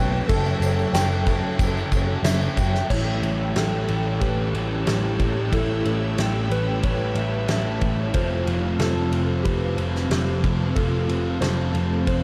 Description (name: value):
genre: rock, shoegaze and dream pop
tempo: 92 BPM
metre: 4/4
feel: straight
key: A mixolydian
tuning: A4 = 440 Hz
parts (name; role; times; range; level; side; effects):
- soft struck synth lead; melody; 0.0-12.2 s; G4 to E5; -33 LUFS; equal; chorus, delay
- string machine, violas; sustained chords; 0.0-12.2 s; C4 to F#6; -37 LUFS; equal; ensemble chorus
- fingerpicked twelve-string acoustic guitar; arpeggios; 0.0-12.2 s; E4 to G5; -33 LUFS; equal; analog chorus, delay
- crunchy overdriven guitar; riff; 0.0-12.2 s; F#2 to F4; -34 LUFS; equal; reverse reverb
- thick fuzz guitar; riff; 0.0-12.2 s; F2 to A3; -31 LUFS; equal; distortion, lush chorus
- vintage muted picked electric bass; bass; 0.0-12.2 s; F1 to B1; -27 LUFS; equal; none
- loose indie drum kit; drums; 0.3-12.2 s; crash cymbal, kick drum, ride cymbal, snare drum; -29 LUFS; equal; none
- tambourine; percussion; 0.3-2.8 s; none; -46 LUFS; equal; none
room: wet huge ambient reverb, RT60 9.1 s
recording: dreamy mix soaked in reverb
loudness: -23 LUFS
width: mono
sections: 0.0-2.9 A section; 2.9-12.2 B section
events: none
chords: 0.0 F#m7; 2.9 A7; 8.1 F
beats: | 0.29 0.94 1.59 2.25 | 2.90 3.55 4.21 4.86 | 5.52 6.18 6.83 7.49 | 8.14 8.80 9.46 10.11 | 10.77 11.43 12.08